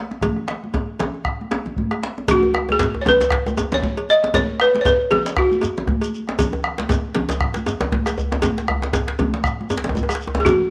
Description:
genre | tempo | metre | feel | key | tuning
west african traditional, West African drum ensemble | 117 BPM | 4/4 | swing 57% on 16ths | B major pentatonic | A4 = 440 Hz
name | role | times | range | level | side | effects
bombo | percussion | 0.1-10.6 s | none | -27 LUFS | equal | none
congas | percussion | 0.1-10.6 s | none | -30 LUFS | equal | none
djembe | percussion | 0.1-10.6 s | none | -30 LUFS | equal | none
cowbell | percussion | 0.2-10.6 s | none | -28 LUFS | equal | none
balafon | melody | 2.3-6.1, 10.4-10.7 s | F#4 to D#5 | -19 LUFS | equal | none
djembe | percussion | 2.3-10.5 s | none | -28 LUFS | equal | none
shekere | percussion | 2.3-10.6 s | none | -34 LUFS | equal | none
room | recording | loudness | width
light reverb | lossy compression artefacts | -20 LUFS | mono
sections
0.0-2.3 A section; 2.3-10.7 B section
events
none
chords
none

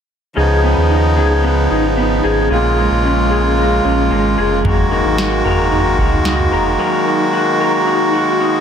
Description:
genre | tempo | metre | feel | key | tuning
dream pop | 112 BPM | 4/4 | straight | F# major | A4 = 441 Hz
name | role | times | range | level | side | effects
accordion | sustained chords | 0.4-8.6 s | C#3 to F#4 | -16 LUFS | equal | none
electric guitar through a small old amp | arpeggios | 0.4-8.6 s | A#2 to A#4 | -17 LUFS | left 1 dB | ensemble chorus, ping-pong delay
sub bass with octave | bass | 0.4-6.8 s | E#1 to D#2 | -17 LUFS | equal | none
booming analog drum machine | drums | 4.6-6.5 s | kick drum, snare drum, toms | -19 LUFS | right 1 dB | none
room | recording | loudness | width
moderate plate reverb, RT60 3.2 s | none | -12 LUFS | side -8 dB against mid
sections
0.4-8.6 A section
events
none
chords
0.4 C#9; 2.5 A#m7; 4.7 F#69

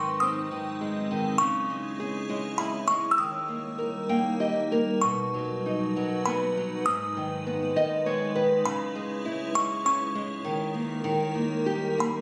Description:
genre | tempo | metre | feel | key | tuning
children's music, lullaby | 100 BPM | 3/4 | rubato | G# minor | A4 = 440 Hz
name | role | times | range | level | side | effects
music box | melody | 0.0-12.2 s | B5 to E6 | -30 LUFS | equal | none
nylon-string guitar | accompaniment | 0.0-12.2 s | G#2 to G5 | -31 LUFS | equal | none
icy glass pad | sustained chords | 0.0-12.2 s | F#3 to C#5 | -35 LUFS | equal | chorus, built-in reverb
room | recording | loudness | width
moderate concert hall reverb, RT60 1.9 s | recorded on a phone in the room, studio reverb, compression | -28 LUFS | mono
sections
0.0-12.2 A section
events
nylon-string guitar fill 3.8-5.0, 7.5-8.7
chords
0.0 G#; 1.4 C#m; 3.2 D#; 5.0 B; 6.9 G#m; 8.7 C#m; 10.4 D#sus4; 11.0 D#

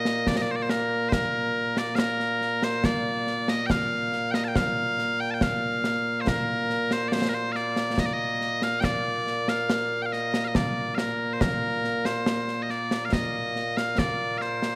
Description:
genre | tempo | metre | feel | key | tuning
scottish traditional, Scottish pipe music | 70 BPM | 3/4 | straight | Bb major | A4 = 440 Hz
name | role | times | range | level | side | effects
loud bright bagpipes | melody | 0.0-14.8 s | Bb2 to A5 | -28 LUFS | equal | none
concert snare drum and concert bass drum | drums | 0.1-14.8 s | none | -31 LUFS | equal | none
room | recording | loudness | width
light reverb | none | -26 LUFS | mono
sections
0.0-14.8 A section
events
none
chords
none

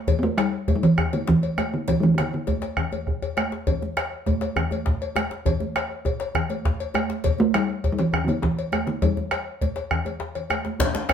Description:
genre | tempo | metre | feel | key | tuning
west african traditional, West African drum ensemble | 134 BPM (dotted quarters) | 12/8 | straight | unclear | A4 = 440 Hz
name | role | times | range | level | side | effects
bombo | percussion | 0.1-11.1 s | none | -26 LUFS | right 1 dB | none
congas | percussion | 0.1-11.1 s | none | -31 LUFS | right 3 dB | none
cowbell | percussion | 0.1-11.1 s | none | -31 LUFS | left 8 dB | none
djembe | percussion | 0.1-11.1 s | none | -30 LUFS | left 5 dB | none
talking drum | melody | 0.2-3.2, 7.4-10.5 s | D3 to B3 | -22 LUFS | right 1 dB | none
djembe | percussion | 10.8-11.1 s | none | -24 LUFS | left 3 dB | none
room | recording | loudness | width
wet studio reverb, RT60 0.8 s | band playing live in one room | -22 LUFS | side -8 dB against mid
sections
0.0-10.8 A section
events
drum fill 2.9-3.7, 10.4-10.8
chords
none

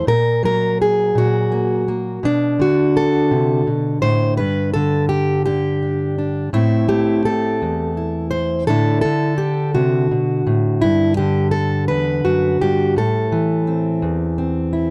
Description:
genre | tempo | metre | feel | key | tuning
folk, solo fingerstyle acoustic guitar | 56 BPM (dotted quarters) | 6/8 | straight | A dorian | A4 = 440 Hz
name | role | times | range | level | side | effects
fingerpicked plugged-in steel-string acoustic guitar | solo | 0.0-14.9 s | E2 to C5 | -18 LUFS | equal | none
room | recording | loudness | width
moderate booth ambience, RT60 0.2 s | dry, close 1970s-style studio recording | -18 LUFS | mono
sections
0.0-14.9 A section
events
none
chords
0.1 F#/A#; 2.2 Bm7; 4.4 G5; 6.5 Am; 8.7 Dadd9/A; 10.8 G; 13.0 Am

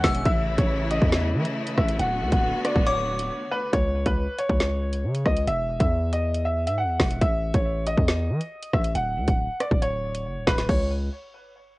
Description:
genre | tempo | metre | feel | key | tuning
hip hop, drill | 138 BPM | 4/4 | half-time | unclear | A4 = 439 Hz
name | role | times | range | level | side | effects
bright concert grand piano | melody | 0.0-10.9 s | B4 to F#5 | -28 LUFS | equal | low-pass filter, cassette tape, analog delay
delicate synth tine bell | second line | 0.0-0.2, 2.9-3.7 s | D6 to E6 | -31 LUFS | left 2 dB | chorus, analog delay
bright studio string section | sustained chords | 0.0-3.7 s | C#3 to F#4 | -30 LUFS | left 1 dB | none
distorted 808-style bass | bass | 0.0-11.1 s | D1 to E3 | -26 LUFS | equal | distortion
drill drum kit | drums | 0.0-10.8 s | crash cymbal, hi-hat, kick drum, rim click, snare drum | -23 LUFS | equal | vintage 12-bit sampler grit, cassette tape
room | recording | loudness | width
digital ambience | home recording on cassette | -22 LUFS | side -20 dB against mid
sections
0.0-3.7 A section; 3.7-10.7 B section; 10.7-11.8 C section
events
break 3.3-3.7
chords
0.3 A; 2.0 D6; 3.7 N.C.; 7.2 A5; 9.0 D; 10.7 N.C.

